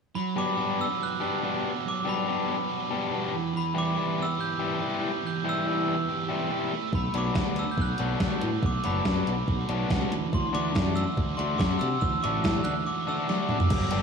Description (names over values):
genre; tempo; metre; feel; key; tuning
indie rock; 142 BPM; 4/4; straight; D major; A4 = 440 Hz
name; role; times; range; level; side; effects
glockenspiel with brass mallets; melody; 0.2-13.6 s; B5 to G6; -31 LUFS; left 1 dB; slapback echo, analog delay
sludgy distorted guitar; riff; 0.2-14.0 s; E3 to G4; -32 LUFS; right 9 dB; overdrive, analog chorus, analog delay
overdriven electric guitar; riff; 0.4-14.0 s; D3 to G4; -31 LUFS; left 6 dB; slapback echo
growling fingered electric bass; bass; 6.9-14.0 s; F#1 to C3; -30 LUFS; equal; overdrive
crisp 8-bit digital drum machine; drums; 6.9-14.0 s; crash cymbal, hi-hat, kick drum, snare drum, toms; -28 LUFS; equal; none
room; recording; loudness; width
moderate lush hall reverb, RT60 1.8 s, digital ambience; big arena sound, small room ambience; -25 LUFS; side -6 dB against mid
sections
0.1-13.7 A section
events
drum fill 13.3-13.7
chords
0.1 Gmaj7; 3.3 Em; 6.7 Bm7; 10.1 Dadd9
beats
| 0.15 0.57 1.00 1.42 | 1.84 2.27 2.69 3.11 | 3.54 3.96 4.38 4.81 | 5.23 5.66 6.08 6.51 | 6.93 7.36 7.78 8.21 | 8.63 9.05 9.48 9.90 | 10.33 10.75 11.18 11.60 | 12.03 12.45 12.87 13.29 | 13.72